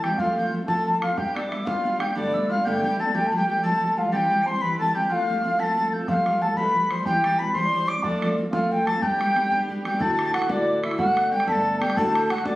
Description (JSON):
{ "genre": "celtic folk, Celtic jig", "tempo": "122 BPM (dotted quarters)", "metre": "6/8", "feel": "straight", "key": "G mixolydian", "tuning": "A4 = 443 Hz", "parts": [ { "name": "baroque flute", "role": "melody", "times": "0.0-12.6 s", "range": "D5 to D6", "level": "-23 LUFS", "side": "left 1 dB", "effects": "plate reverb" }, { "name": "mellow cor anglais", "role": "second line", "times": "0.0-12.6 s", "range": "D4 to D5", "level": "-34 LUFS", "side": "right 2 dB", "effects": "none" }, { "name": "mellow hollow tin whistle", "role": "second line", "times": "0.0-12.6 s", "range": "D6 to D7", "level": "-32 LUFS", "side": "left 1 dB", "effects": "none" }, { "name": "fingerpicked steel-string acoustic guitar", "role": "accompaniment", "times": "0.0-12.6 s", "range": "D2 to G4", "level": "-26 LUFS", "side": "equal", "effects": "none" }, { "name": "bodhran", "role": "percussion", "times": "0.0-2.1, 6.1-12.5 s", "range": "none", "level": "-32 LUFS", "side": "right 1 dB", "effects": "none" } ], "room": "wet small room reverb, RT60 0.6 s", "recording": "recorded on a phone in the room, studio reverb", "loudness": "-20 LUFS", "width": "side -16 dB against mid", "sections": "0.0-2.2 A section; 2.2-10.0 A section; 10.0-12.6 B section", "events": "none", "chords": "0.2 F; 1.2 G; 2.2 Gadd9; 3.1 Fadd9; 4.1 C/E; 5.1 F; 6.1 Fadd9; 7.1 C; 8.0 F; 9.0 G; 10.0 Dadd9; 11.0 Gadd9; 12.0 D" }